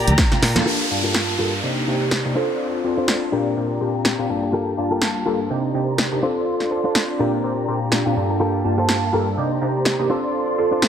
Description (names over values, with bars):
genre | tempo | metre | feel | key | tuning
filtered disco house | 124 BPM | 4/4 | swing 56% on 16ths | G minor | A4 = 441 Hz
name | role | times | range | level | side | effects
warm symphonic violin section | sustained chords | 0.0-10.9 s | Bb3 to C6 | -29 LUFS | equal | sidechain pumping, low-pass filter
direct-recorded clean electric guitar | riff | 0.0-10.9 s | D4 to D5 | -26 LUFS | left 2 dB | sidechain pumping, low-pass filter
dry thumbed slap bass | bass | 0.0-0.6 s | D2 to Bb2 | -19 LUFS | equal | sidechain pumping, low-pass filter
punchy analog drum machine | drums | 0.1-10.9 s | hi-hat, snare drum | -22 LUFS | equal | sidechain pumping on hats
tube shaker and congas | percussion | 0.1-0.6 s | none | -27 LUFS | right 2 dB | sidechain pumping on perc, low-pass filter on perc
funky polysynth comp | accompaniment | 0.3-10.9 s | G2 to A5 | -21 LUFS | equal | chorus, phaser, sidechain pumping, low-pass filter
downlifter | sound effects | 0.7-4.5 s | none | -27 LUFS | equal | none
room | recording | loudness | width
light reverb | none | -18 LUFS | side -8 dB against mid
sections
0.7-10.9 A section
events
drum fill 0.3-0.7; band accent 0.5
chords
0.0 Bb6; 0.7 Gm9; 1.6 Cm9; 2.4 Dm7; 3.3 Bb6; 4.5 Gm9; 5.5 Cm9; 6.2 Dm7; 7.2 Gm9; 9.4 Cm9; 10.1 Dm7